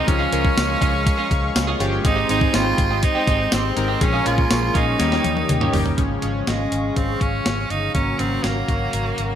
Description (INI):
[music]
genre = 1980s-style pop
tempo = 122 BPM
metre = 4/4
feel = straight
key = unclear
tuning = A4 = 440 Hz
[part]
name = raspy tenor saxophone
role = melody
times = 0.0-9.4 s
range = Ab3 to F4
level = -24 LUFS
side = right 2 dB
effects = none
[part]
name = chorused retro synth keys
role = accompaniment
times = 0.0-9.4 s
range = Db3 to G5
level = -25 LUFS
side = left 1 dB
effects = phaser
[part]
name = warm analog pad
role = sustained chords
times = 0.0-9.4 s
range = Ab3 to Eb6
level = -30 LUFS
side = left 1 dB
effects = chorus, tremolo
[part]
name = twelve-string electric guitar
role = riff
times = 0.0-5.9 s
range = Bb3 to Ab4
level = -29 LUFS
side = right 5 dB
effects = tube saturation, lush chorus
[part]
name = mellow synth brass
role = stabs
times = 0.0-6.0 s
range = Eb3 to Db5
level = -31 LUFS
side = left 2 dB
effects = chorus
[part]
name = vintage muted fingered electric bass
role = bass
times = 0.1-9.4 s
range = G1 to Eb2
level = -25 LUFS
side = equal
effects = none
[part]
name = clean 12-bit digital drum machine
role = drums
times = 0.1-9.3 s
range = hi-hat, kick drum, snare drum, tambourine, toms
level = -22 LUFS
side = equal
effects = overdrive
[sound]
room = moderate lush hall reverb, RT60 1.8 s, digital ambience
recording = bright 1980s-style digital production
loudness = -17 LUFS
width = side -9 dB against mid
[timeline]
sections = 0.0-6.0 A section; 6.0-9.4 B section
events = drum fill 5.0-6.0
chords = 0.1 Db; 2.0 Abmaj7; 4.0 Bbm7; 5.0 Eb7; 6.0 Db/Ab; 7.9 Gb/Ab